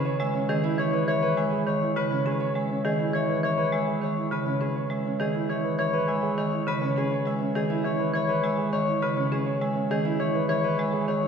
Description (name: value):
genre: classical, minimalist pattern music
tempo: 102 BPM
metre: 4/4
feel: straight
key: E major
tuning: A4 = 439 Hz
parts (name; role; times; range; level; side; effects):
- Celtic harp; melody; 0.0-11.3 s; G#4 to E5; -28 LUFS; left 5 dB; none
- marimba with hard mallets; accompaniment; 0.0-11.3 s; C#3 to C#4; -27 LUFS; right 1 dB; none
- dark grand piano; arpeggios; 0.1-11.3 s; C#4 to C#5; -30 LUFS; right 5 dB; none
room: wet concert hall reverb, RT60 2.1 s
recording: recorded in a church or concert hall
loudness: -23 LUFS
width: side -6 dB against mid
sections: 0.0-11.3 A section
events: none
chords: 0.0 Emaj7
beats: 0.49 | 1.08 1.67 2.26 2.85 | 3.44 4.02 4.61 5.20 | 5.79 6.38 6.96 7.55 | 8.14 8.73 9.32 9.90 | 10.49 11.08